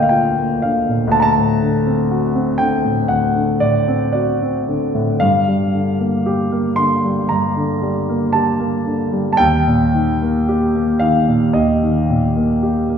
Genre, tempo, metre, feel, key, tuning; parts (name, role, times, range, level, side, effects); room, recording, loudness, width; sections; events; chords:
classical, romantic nocturne for solo piano; 55-62 BPM; 4/4; rubato; A4 = 439 Hz
warm grand piano; solo; 0.0-13.0 s; D2 to C6; -14 LUFS; equal
wet recital hall reverb, RT60 1.3 s; heard from further back in the room; -14 LUFS; side -7 dB against mid
0.0-13.0 A section
0.0 Bb/D; 1.1 D7; 5.2 Gm7; 9.4 Eb